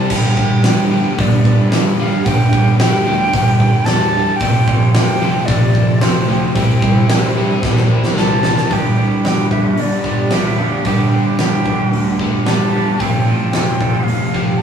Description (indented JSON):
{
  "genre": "rock, shoegaze and dream pop",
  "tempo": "112 BPM",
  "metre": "4/4",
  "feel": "straight",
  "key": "G mixolydian",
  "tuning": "A4 = 441 Hz",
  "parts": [
    { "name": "breathy mellow silver concert flute", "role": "melody", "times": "0.0-14.6 s", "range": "C5 to A5", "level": "-22 LUFS", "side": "right 1 dB", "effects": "none" },
    { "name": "fingerpicked twelve-string acoustic guitar", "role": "arpeggios", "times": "0.0-14.6 s", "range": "E3 to G4", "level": "-29 LUFS", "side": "right 6 dB", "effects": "none" },
    { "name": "overdriven electric guitar", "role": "riff", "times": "0.0-14.6 s", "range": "F2 to C4", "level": "-23 LUFS", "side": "equal", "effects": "none" },
    { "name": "thick fuzz guitar", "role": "riff", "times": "0.0-14.6 s", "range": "F2 to C4", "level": "-20 LUFS", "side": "left 4 dB", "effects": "distortion" },
    { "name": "twangy electric guitar", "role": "riff", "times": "0.0-14.6 s", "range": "G2 to A4", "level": "-24 LUFS", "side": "right 7 dB", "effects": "none" },
    { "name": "fuzz fingered electric bass", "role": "bass", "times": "0.1-14.5 s", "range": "E1 to G2", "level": "-22 LUFS", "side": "equal", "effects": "overdrive" },
    { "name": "huge arena drum kit", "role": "drums", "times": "0.1-14.5 s", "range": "crash cymbal, hi-hat, kick drum, snare drum", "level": "-15 LUFS", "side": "right 1 dB", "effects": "none" }
  ],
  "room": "moderate stone room reverb, RT60 1.0 s",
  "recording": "rough rehearsal-room recording, studio reverb",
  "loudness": "-12 LUFS",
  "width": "side -8 dB against mid",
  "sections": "0.0-8.7 A section; 8.7-14.6 B section",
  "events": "drum fill 7.6-8.7",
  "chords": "0.1 G; 4.4 Fadd9; 6.6 C; 8.7 G; 13.0 Fadd9",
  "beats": "| 0.10 0.64 1.18 1.72 | 2.26 2.79 3.33 3.87 | 4.41 4.94 5.48 6.02 | 6.55 7.09 7.63 8.16 | 8.70 9.24 9.78 10.31 | 10.85 11.39 11.93 12.47 | 13.01 13.54 14.08 14.62"
}